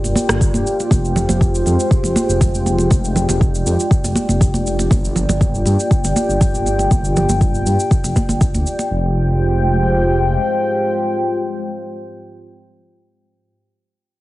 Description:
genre	afro house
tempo	120 BPM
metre	4/4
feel	straight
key	F dorian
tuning	A4 = 440 Hz
part	dark analog pad	sustained chords	0.0-13.5 s	Ab3 to G5	-20 LUFS	equal	chorus, phaser, sidechain pumping
part	dark detuned saw bass	bass	0.0-10.4 s	F1 to G2	-18 LUFS	equal	sidechain pumping
part	electronic cabasa and rim click	drums	0.0-8.9 s	none	-24 LUFS	right 1 dB	none
part	congas	percussion	0.0-8.9 s	none	-22 LUFS	right 2 dB	none
part	electronic kick drum	drums	0.4-8.5 s	none	-16 LUFS	equal	none
room	light reverb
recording	heavily compressed radio sound, multiband compression, nothing above 10.9 kHz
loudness	-14 LUFS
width	side -17 dB against mid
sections	0.0-8.9 A section; 8.9-12.9 B section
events	none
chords	0.0 Gm7; 0.9 Fmadd9; 4.9 Gm7; 8.9 Fmadd9

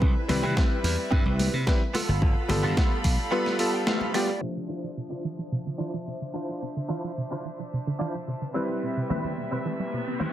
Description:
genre	nu-disco, nu disco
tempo	109 BPM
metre	4/4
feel	straight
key	D dorian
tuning	A4 = 440 Hz
part	rich studio violin section	sustained chords	0.0-10.3 s	C4 to B5	-36 LUFS	equal	sidechain pumping, low-pass filter
part	direct-recorded clean electric guitar	riff	0.0-10.3 s	B3 to A5	-34 LUFS	right 2 dB	ensemble chorus, low-pass filter, tape echo
part	slap bass	bass	0.0-3.2 s	G1 to C3	-27 LUFS	equal	tube saturation, sidechain pumping
part	electronic kick drum	drums	0.0-3.2 s	none	-23 LUFS	equal	none
part	bright electric grand piano	accompaniment	0.3-10.3 s	F3 to E5	-31 LUFS	equal	sidechain pumping, tape echo
part	dusty soul sampler-style drum kit	drums	0.3-4.5 s	crash cymbal, hi-hat, rim click, snare drum	-32 LUFS	equal	overdrive
part	congas	percussion	0.3-4.1, 9.1-10.3 s	none	-34 LUFS	left 4 dB	none
part	wide unison pluck	arpeggios	4.4-10.3 s	B2 to G3	-32 LUFS	right 2 dB	sidechain pumping, tape echo
part	riser	sound effects	9.4-10.3 s	none	-36 LUFS	left 4 dB	none
room	light reverb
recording	low-pass filter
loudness	-25 LUFS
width	side -12 dB against mid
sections	0.0-4.4 A section; 4.4-10.3 B section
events	clean electric guitar fill 3.3-4.4; band accent 3.9; filter sweep on violin section 4.4-10.3; filter sweep on synth arpeggio sound 4.4-10.3; filter sweep 4.4-10.3; riser 9.4-10.3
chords	0.0 Cmaj7; 1.9 G9; 4.4 Dm9; 8.6 Cmaj7

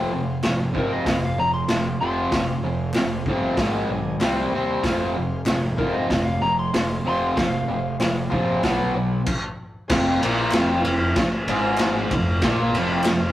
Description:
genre	garage rock duo or trio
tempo	95 BPM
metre	4/4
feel	straight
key	F minor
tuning	A4 = 440 Hz
part	overdriven combo organ	sustained chords	0.0-13.3 s	F#4 to Ab5	-37 LUFS	left 2 dB	none
part	fuzz guitar	riff	0.0-13.3 s	F2 to C4	-23 LUFS	equal	distortion
part	fuzz picked electric bass	bass	0.0-13.3 s	F1 to Eb2	-30 LUFS	equal	overdrive
part	raw garage drum kit	drums	0.4-13.2 s	crash cymbal, hi-hat, kick drum, ride cymbal, snare drum	-24 LUFS	equal	none
part	group handclap	percussion	0.4-13.2 s	none	-38 LUFS	equal	none
part	electric slide guitar	melody	0.8-8.6 s	Bb4 to C6	-26 LUFS	left 1 dB	none
room	moderate stone room reverb, RT60 1.0 s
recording	rough rehearsal-room recording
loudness	-20 LUFS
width	side -14 dB against mid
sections	0.0-9.9 A section; 9.9-13.3 B section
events	stop 9.3-9.9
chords	0.0 Fm; 3.6 Ab5; 4.2 C5; 4.8 Fm; 8.6 B5; 9.3 N.C.; 9.9 Fm

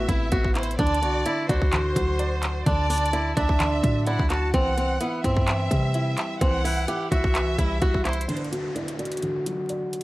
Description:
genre	hip hop, trap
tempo	128 BPM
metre	4/4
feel	half-time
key	unclear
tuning	A4 = 440 Hz
part	picked swing-style acoustic guitar	melody	0.0-10.0 s	B3 to G4	-27 LUFS	right 1 dB	low-pass filter
part	rich studio violin section	second line	0.0-8.3 s	C5 to A5	-32 LUFS	right 1 dB	tape echo
part	dark baby grand piano	accompaniment	0.0-10.0 s	A2 to D5	-31 LUFS	left 1 dB	low-pass filter
part	clean 808-style bass	bass	0.0-8.3 s	A1 to C3	-26 LUFS	equal	none
part	trap drum kit	drums	0.1-10.0 s	handclaps, hi-hat, kick drum	-26 LUFS	equal	none
part	downlifter	sound effects	8.3-10.0 s	none	-38 LUFS	right 1 dB	none
room	studio reverb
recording	dry, gritty hardware recording, vinyl crackle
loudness	-21 LUFS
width	side -18 dB against mid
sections	0.0-8.3 A section; 8.3-10.0 B section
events	filter sweep 8.3-10.0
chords	0.0 Amadd9; 0.8 D; 4.5 C; 8.3 D

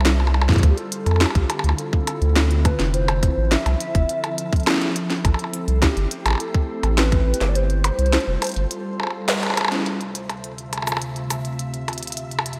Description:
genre	IDM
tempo	104 BPM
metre	4/4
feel	straight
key	unclear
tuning	A4 = 441 Hz
part	warbly nostalgic lead	melody	0.0-9.3 s	G4 to E5	-31 LUFS	equal	subtle chorus, digital delay
part	glassy FM pad	sustained chords	0.0-12.6 s	D2 to E5	-31 LUFS	equal	ensemble chorus, built-in reverb
part	round analog bass	bass	0.0-8.7 s	F1 to G2	-22 LUFS	equal	none
part	glitchy drum kit	drums	0.0-12.6 s	hi-hat, percussion blips, shaker, snare drum	-26 LUFS	equal	overdrive, gated reverb
part	electronic kick drum	drums	0.5-7.2 s	none	-22 LUFS	equal	overdrive
room	moderate lush hall reverb, RT60 2.3 s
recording	bright 1980s-style digital production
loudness	-21 LUFS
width	mono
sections	0.0-9.9 A section; 9.9-12.6 B section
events	kick drops out 7.6-9.9; band accent 9.3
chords	0.0 G9sus4; 0.6 Dm9; 2.9 Fmaj7; 5.2 Am7; 7.6 G9sus4; 9.9 Dm9

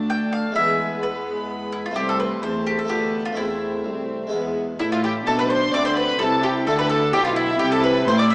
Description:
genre	classical, baroque-style concerto movement with solo episodes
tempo	128 BPM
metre	3/4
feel	straight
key	A minor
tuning	A4 = 442 Hz
part	bowl-back mandolin	melody	0.0-8.3 s	E4 to G5	-24 LUFS	equal	none
part	rich chamber violin section	melody	0.0-8.3 s	E5 to E6	-28 LUFS	left 1 dB	none
part	rich chamber violin section	second line	0.0-8.3 s	B3 to E5	-26 LUFS	equal	none
part	dark chamber viola section	accompaniment	0.0-8.3 s	G#3 to E4	-27 LUFS	equal	none
part	harpsichord	accompaniment	0.0-8.3 s	C2 to A4	-28 LUFS	equal	none
part	dark chamber cello section	bass	0.0-8.3 s	C2 to D3	-26 LUFS	equal	none
part	warm studio double bass section	bass	4.8-8.3 s	A1 to D2	-31 LUFS	equal	none
room	wet scoring stage reverb, RT60 1.6 s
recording	small speaker sound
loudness	-19 LUFS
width	side -27 dB against mid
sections	0.0-4.8 A section; 4.8-8.3 B section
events	none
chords	0.0 Dm; 0.6 E; 2.0 Am/C; 2.9 Bm7b5/D; 3.4 Am/E; 4.3 E; 4.8 Am; 6.2 Am/C; 7.6 C

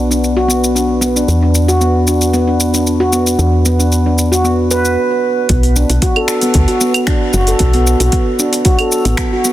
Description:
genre	organic downtempo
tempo	114 BPM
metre	4/4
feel	swing 53% on 16ths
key	B minor pentatonic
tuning	A4 = 440 Hz
part	handpan	arpeggios	0.0-9.5 s	B3 to B4	-14 LUFS	equal	digital delay
part	woody FM bass	bass	0.0-9.2 s	F#1 to E2	-14 LUFS	equal	sidechain pumping
part	deep house drum kit	drums	0.1-9.5 s	claves, finger snaps, hi-hat, shaker	-19 LUFS	equal	soft clipping on snare
part	electronic kick drum	drums	5.5-9.3 s	none	-15 LUFS	equal	none
room	light reverb, digital ambience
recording	dense, heavily limited modern master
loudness	-11 LUFS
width	side -14 dB against mid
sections	0.0-5.5 A section; 5.5-9.5 B section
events	filter sweep on handpan 0.0-5.5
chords	0.0 Bm; 1.3 E5; 5.5 Bm

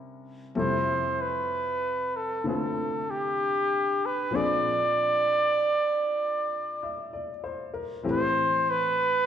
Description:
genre	jazz ballad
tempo	64 BPM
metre	4/4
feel	swing 66% on 8ths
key	unclear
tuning	A4 = 444 Hz
part	warm upright piano	accompaniment	0.0-9.3 s	F2 to E5	-32 LUFS	left 2 dB	none
part	breathy trumpet	melody	0.6-9.3 s	G4 to D5	-25 LUFS	right 1 dB	none
room	wet recital hall reverb, RT60 1.7 s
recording	recorded in a church or concert hall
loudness	-24 LUFS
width	side -9 dB against mid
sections	0.0-9.3 A section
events	none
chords	0.0 C7b9; 0.5 Fmaj9#11; 4.3 Bb9; 8.0 Am7

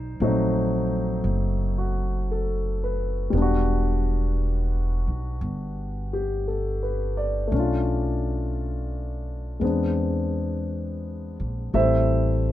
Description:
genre	jazz ballad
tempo	57 BPM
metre	4/4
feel	swing 67% on 8ths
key	unclear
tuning	A4 = 441 Hz
part	warm upright piano	accompaniment	0.0-12.5 s	F#3 to E5	-26 LUFS	left 2 dB	none
part	upright bass	bass	0.0-12.5 s	E1 to E2	-26 LUFS	equal	none
room	light reverb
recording	none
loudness	-23 LUFS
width	side -13 dB against mid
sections	0.0-12.5 A section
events	none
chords	0.0 B7b9; 3.3 Em9; 7.5 Bm7b5; 9.6 E7b13; 11.7 Am7

